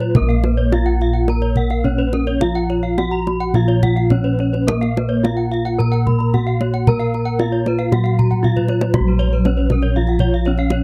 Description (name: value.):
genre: Balinese gamelan.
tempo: 106-119 BPM.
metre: 4/4.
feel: straight.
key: Bb pelog.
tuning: A4 = 440 Hz.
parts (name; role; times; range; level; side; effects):
gamelan-type bronze metallophone; melody; 0.0-10.8 s; Gb3 to Bb4; -24 LUFS; equal; none.
gamelan-type bronze metallophone; accompaniment; 0.0-10.8 s; F3 to Bb3; -28 LUFS; equal; none.
gamelan-type bronze metallophone; arpeggios; 0.0-10.7 s; Cb5+35c to Bb5; -30 LUFS; equal; none.
gamelan-type bossed gongs; bass; 0.0-10.8 s; Bb1 to Bb4; -21 LUFS; equal; none.
kendang; percussion; 0.0-10.8 s; none; -23 LUFS; equal; none.
gamelan-type bronze metallophone; arpeggios; 0.2-10.8 s; Gb4 to Cb6+35c; -30 LUFS; equal; none.
room: little or no reverb.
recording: dark, warm production.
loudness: -17 LUFS.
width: mono.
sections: 0.0-9.0 A section; 9.0-10.8 B section.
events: drum fill 8.3-9.0.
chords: none.